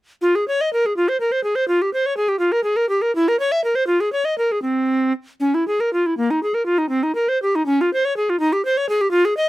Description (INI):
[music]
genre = classical, baroque-style fantasia for unaccompanied recorder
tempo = 81 BPM (dotted quarters)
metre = 6/8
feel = uneven beats, rubato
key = F minor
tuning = A4 = 440 Hz
[part]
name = bright bass recorder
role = solo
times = 0.2-9.5 s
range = Bb3 to E5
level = -17 LUFS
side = equal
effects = none
[sound]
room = little or no reverb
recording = close, detailed microphones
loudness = -17 LUFS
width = side -17 dB against mid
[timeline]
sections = 0.2-9.5 A section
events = none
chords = none